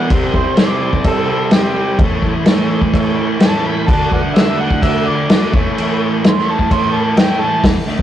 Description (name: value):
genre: garage rock duo or trio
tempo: 127 BPM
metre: 4/4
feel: straight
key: unclear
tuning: A4 = 440 Hz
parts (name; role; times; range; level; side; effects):
- overdriven harmonica; melody; 0.0-7.6 s; G4 to C6; -19 LUFS; right 2 dB; none
- fuzz guitar; riff; 0.0-8.0 s; A2 to D4; -18 LUFS; right 1 dB; distortion
- combo organ; sustained chords; 0.1-7.5 s; E4 to D5; -25 LUFS; equal; none
- vintage drum kit; drums; 0.1-8.0 s; crash cymbal, hi-hat, kick drum, snare drum; -14 LUFS; equal; none
room: moderate stone room reverb, RT60 1.0 s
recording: rough rehearsal-room recording, warm saturation, cassette tape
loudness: -12 LUFS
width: side -11 dB against mid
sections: 0.0-7.6 A section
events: none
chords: 0.1 C; 2.0 A; 3.9 D; 5.5 A